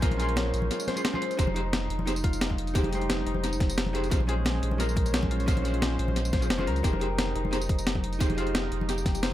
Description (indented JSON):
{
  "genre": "liquid drum and bass",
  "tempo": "176 BPM",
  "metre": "4/4",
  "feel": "straight",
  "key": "F minor",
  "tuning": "A4 = 441 Hz",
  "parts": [
    { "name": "vintage hollow-body jazz guitar", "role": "accompaniment", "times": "0.0-9.1 s", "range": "Ab3 to C6", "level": "-34 LUFS", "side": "equal", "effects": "tape echo" },
    { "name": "warm analog pad", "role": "sustained chords", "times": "0.0-9.3 s", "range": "Ab3 to C5", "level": "-36 LUFS", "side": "right 1 dB", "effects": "chorus, vintage 12-bit sampler grit, sidechain pumping" },
    { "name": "concert harp", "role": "arpeggios", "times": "0.0-9.3 s", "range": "Eb4 to Db5", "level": "-35 LUFS", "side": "left 4 dB", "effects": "tape echo" },
    { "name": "saturated sub bass", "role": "bass", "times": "0.0-9.3 s", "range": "F1 to Db2", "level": "-30 LUFS", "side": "equal", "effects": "none" },
    { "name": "breakbeat sampler-style drum kit", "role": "drums", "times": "0.0-9.3 s", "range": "hi-hat, snare drum, tambourine", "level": "-32 LUFS", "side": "equal", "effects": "tape echo" },
    { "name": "electronic kick drum", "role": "drums", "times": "0.0-9.1 s", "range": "none", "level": "-27 LUFS", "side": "equal", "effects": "none" },
    { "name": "congas", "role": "percussion", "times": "0.1-9.1 s", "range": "none", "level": "-36 LUFS", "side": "left 2 dB", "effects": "tape echo" }
  ],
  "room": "light reverb",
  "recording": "echo-heavy mix",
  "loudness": "-25 LUFS",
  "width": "side -13 dB against mid",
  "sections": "0.0-9.3 A section",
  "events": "break 0.7-1.4",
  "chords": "0.0 Bbm9; 1.4 Fm9; 4.1 Bbm9; 6.8 Fm9"
}